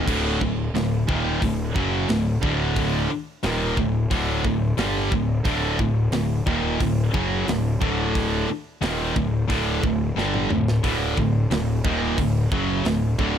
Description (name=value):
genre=heavy metal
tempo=89 BPM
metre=4/4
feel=straight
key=unclear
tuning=A4 = 440 Hz
part: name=high-gain distorted guitar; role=riff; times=0.0-13.4 s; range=D2 to G3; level=-24 LUFS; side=left 7 dB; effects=distortion
part: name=tight distorted guitar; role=riff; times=0.0-13.4 s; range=D2 to G3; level=-25 LUFS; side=right 9 dB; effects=distortion
part: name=fuzz picked electric bass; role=bass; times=0.0-13.4 s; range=D1 to G1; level=-28 LUFS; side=equal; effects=overdrive
part: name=tight metal drum kit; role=drums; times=0.1-13.3 s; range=crash cymbal, hi-hat, kick drum, snare drum, toms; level=-28 LUFS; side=equal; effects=none
room=small room ambience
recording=none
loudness=-20 LUFS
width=side -9 dB against mid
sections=0.1-13.4 A section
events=drum fill 10.2-10.8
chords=0.1 D